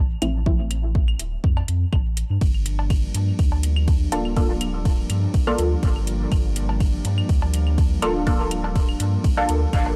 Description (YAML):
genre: dub techno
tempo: 123 BPM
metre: 4/4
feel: swing 54% on 16ths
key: unclear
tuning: A4 = 445 Hz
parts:
  - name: filtered dub chord stab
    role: stabs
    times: 0.0-0.7, 4.1-10.0 s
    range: F3 to A4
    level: -28 LUFS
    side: equal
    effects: chorus, phaser, sidechain pumping, dub echo
  - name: warm sub bass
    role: bass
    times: 0.0-10.0 s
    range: D1 to G2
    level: -26 LUFS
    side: equal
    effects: sidechain pumping
  - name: deep house drum kit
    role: drums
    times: 0.2-9.8 s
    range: hi-hat, ride cymbal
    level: -38 LUFS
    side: equal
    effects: overdrive
  - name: claves and cowbell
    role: percussion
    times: 0.2-10.0 s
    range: none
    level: -38 LUFS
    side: equal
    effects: sidechain pumping on perc, dub echo
  - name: electronic kick drum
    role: drums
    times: 0.5-9.8 s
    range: none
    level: -23 LUFS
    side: equal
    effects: overdrive
  - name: airy breathy pad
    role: sustained chords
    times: 2.4-10.0 s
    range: F3 to D4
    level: -34 LUFS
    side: equal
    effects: chorus, sidechain pumping
room: little or no reverb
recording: dry, gritty hardware recording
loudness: -21 LUFS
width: mono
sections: 0.0-10.0 A section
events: filter sweep on synth stab 0.0-10.0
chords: 0.0 Dm7 (rootless); 2.4 Gm7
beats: | 0.46 0.95 1.44 1.93 | 2.41 2.90 3.39 3.88 | 4.37 4.85 5.34 5.83 | 6.32 6.80 7.29 7.78 | 8.27 8.76 9.24 9.73